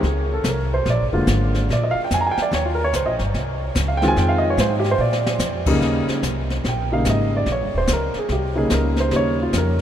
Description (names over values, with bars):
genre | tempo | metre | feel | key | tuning
jazz piano trio | 145 BPM | 4/4 | swing 64% on 8ths | Eb mixolydian | A4 = 440 Hz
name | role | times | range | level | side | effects
dark upright piano | melody | 0.0-9.8 s | Db3 to Bb5 | -20 LUFS | right 1 dB | none
upright bass | bass | 0.0-9.8 s | Eb1 to Bb2 | -22 LUFS | equal | none
jazz brush drum kit | drums | 0.0-9.8 s | brushed snare drum, crash cymbal, hi-hat, kick drum, snare drum | -26 LUFS | left 1 dB | none
room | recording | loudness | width
moderate huge ambient reverb, RT60 8.0 s | in a vast, echoing space | -18 LUFS | side -10 dB against mid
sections
0.0-5.8 A section; 5.8-9.8 A section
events
upright piano solo 0.0-9.8; drum fill 5.0-5.4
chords
0.0 Fm (rootless); 0.9 Bb7; 2.5 Eb7; 3.3 Dbmaj7/C; 4.2 Fm7; 5.0 Bb; 5.8 Eb7